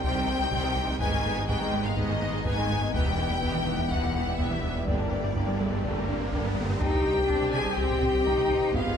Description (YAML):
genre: cinematic, hybrid orchestral and electronic film score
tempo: 124 BPM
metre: 4/4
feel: straight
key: C minor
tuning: A4 = 440 Hz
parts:
  - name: warm symphonic violin section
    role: melody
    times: 0.0-9.0 s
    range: D5 to Ab5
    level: -33 LUFS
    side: left 4 dB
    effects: none
  - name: warm symphonic violin section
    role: second line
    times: 0.0-9.0 s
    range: Bb3 to Ab5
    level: -35 LUFS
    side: left 3 dB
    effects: none
  - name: rich studio viola section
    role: accompaniment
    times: 0.0-9.0 s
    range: D3 to Ab4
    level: -36 LUFS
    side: right 2 dB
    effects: none
  - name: deep dark ambient pad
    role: sustained chords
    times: 0.0-9.0 s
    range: Eb3 to Eb5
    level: -36 LUFS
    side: equal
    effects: chorus, built-in reverb
  - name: mellow French horn section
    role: sustained chords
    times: 0.0-9.0 s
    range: G3 to Ab4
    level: -31 LUFS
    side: left 3 dB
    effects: none
  - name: rubbery square bass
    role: riff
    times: 0.0-8.9 s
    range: C2 to Ab3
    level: -33 LUFS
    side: right 1 dB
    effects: none
  - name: dark detuned saw bass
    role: bass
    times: 0.0-9.0 s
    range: E1 to C2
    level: -36 LUFS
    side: equal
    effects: none
  - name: rich studio cello section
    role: bass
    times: 0.0-9.0 s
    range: E2 to Eb4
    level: -34 LUFS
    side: right 2 dB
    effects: none
  - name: warm symphonic double bass section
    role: bass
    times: 0.0-9.0 s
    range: E1 to C2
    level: -37 LUFS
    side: right 4 dB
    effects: none
  - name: taiko ensemble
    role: drums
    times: 0.0-9.0 s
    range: none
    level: -34 LUFS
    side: equal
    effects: none
  - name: riser and sub drop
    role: sound effects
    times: 4.6-8.8 s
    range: none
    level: -38 LUFS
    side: right 1 dB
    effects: none
room: wet scoring stage reverb, RT60 1.6 s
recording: none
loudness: -24 LUFS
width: side -7 dB against mid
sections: 0.0-6.8 A section; 6.8-9.0 A section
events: riser 4.6-6.8; impact 6.8-8.7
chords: 0.0 Cm; 1.0 Abm; 2.9 Em; 4.9 Gm; 6.8 Cm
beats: 0.04 0.52 | 1.01 1.49 1.98 2.46 | 2.94 3.43 3.91 4.39 | 4.88 5.36 5.85 6.33 | 6.81 7.30 7.78 8.27 | 8.75